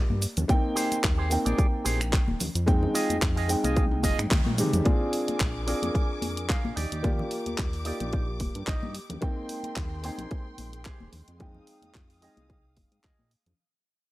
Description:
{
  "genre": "nu-disco, nu disco",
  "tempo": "110 BPM",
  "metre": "4/4",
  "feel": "swing 55% on 16ths",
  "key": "unclear",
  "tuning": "A4 = 440 Hz",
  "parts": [
    { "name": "dark concert grand piano", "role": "accompaniment", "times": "0.0-13.3 s", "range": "Ab3 to G5", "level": "-31 LUFS", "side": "equal", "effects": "sidechain pumping, low-pass filter" },
    { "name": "chorused synth bass", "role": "bass", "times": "0.0-13.5 s", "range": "Eb1 to Bb2", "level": "-31 LUFS", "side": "equal", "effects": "none" },
    { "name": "congas and cabasa", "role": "percussion", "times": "0.1-13.6 s", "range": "none", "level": "-35 LUFS", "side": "left 2 dB", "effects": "none" },
    { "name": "electric guitar with an envelope filter", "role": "riff", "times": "0.2-13.3 s", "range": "Eb4 to F5", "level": "-35 LUFS", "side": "right 3 dB", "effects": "wide subtle chorus, low-pass filter" },
    { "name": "house drum kit", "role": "drums", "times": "0.2-13.6 s", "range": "finger snaps, handclaps, hi-hat, shaker, toms", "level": "-32 LUFS", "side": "equal", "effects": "none" },
    { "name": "electronic kick drum", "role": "drums", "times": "0.5-13.2 s", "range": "none", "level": "-26 LUFS", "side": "equal", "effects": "none" },
    { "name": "dark studio string section", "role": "sustained chords", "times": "4.8-13.6 s", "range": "Ab3 to Eb6", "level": "-42 LUFS", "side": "equal", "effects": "sidechain pumping" }
  ],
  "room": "little or no reverb",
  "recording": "dry, gritty hardware recording",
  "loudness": "-24 LUFS",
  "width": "side -17 dB against mid",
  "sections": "0.0-4.9 A section; 4.9-13.6 B section",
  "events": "filter sweep on clean electric guitar 0.0-4.9, 4.9-13.6; drum fill 3.8-4.9; band accent 4.3; fade-out 4.9-13.6",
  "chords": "0.5 Abmaj7; 2.7 Fm7; 4.9 Bb7; 6.8 Ebmaj7; 9.2 Abmaj7; 11.4 Fm7"
}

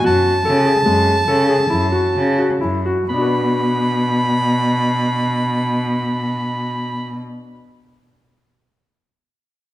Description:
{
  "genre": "contemporary instrumental, contemporary",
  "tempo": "124-152 BPM",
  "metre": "7/4",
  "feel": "straight",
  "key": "B dorian",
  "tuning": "A4 = 439 Hz",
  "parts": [
    { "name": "edgy soprano saxophone", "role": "melody", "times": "0.0-7.2 s", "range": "A5 to B5", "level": "-20 LUFS", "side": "right 1 dB", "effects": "none" },
    { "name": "clear baby grand piano", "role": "arpeggios", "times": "0.0-7.6 s", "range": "G#3 to B4", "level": "-20 LUFS", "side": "left 2 dB", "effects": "none" },
    { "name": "rich cello", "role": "bass", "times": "0.0-7.2 s", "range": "F#2 to C#3", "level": "-19 LUFS", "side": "equal", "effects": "none" }
  ],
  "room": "wet recital hall reverb, RT60 1.6 s",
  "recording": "none",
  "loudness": "-15 LUFS",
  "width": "side -14 dB against mid",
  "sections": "0.0-3.1 A section; 3.1-6.5 B section",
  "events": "slowing down 0.0-3.1",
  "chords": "0.0 F#madd9; 3.1 Bm"
}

